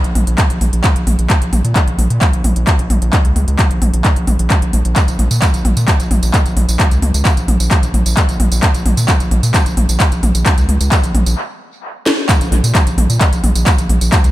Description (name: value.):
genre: driving peak-time techno.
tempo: 131 BPM.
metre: 4/4.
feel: straight.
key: Bb minor.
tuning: A4 = 439 Hz.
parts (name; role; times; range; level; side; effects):
gritty driven synth bass; bass; 0.0-14.3 s; Bb1 to Bb2; -14 LUFS; equal; sidechain pumping.
techno drum kit; drums; 0.0-14.3 s; handclaps, hi-hat, snare drum, tambourine, toms; -17 LUFS; equal; overdrive, sidechain pumping on toms, sidechain pumping on hats, sidechain pumping on cymbals, sidechain pumping on perc, dub echo.
electronic kick drum; drums; 0.4-14.2 s; none; -14 LUFS; equal; none.
room: little or no reverb.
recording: echo-heavy mix.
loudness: -11 LUFS.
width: side -15 dB against mid.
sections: 0.0-12.3 A section; 12.3-14.3 B section.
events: stop 11.4-12.3; drum fill 12.1; band accent 12.1; drop 12.3-14.3.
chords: none.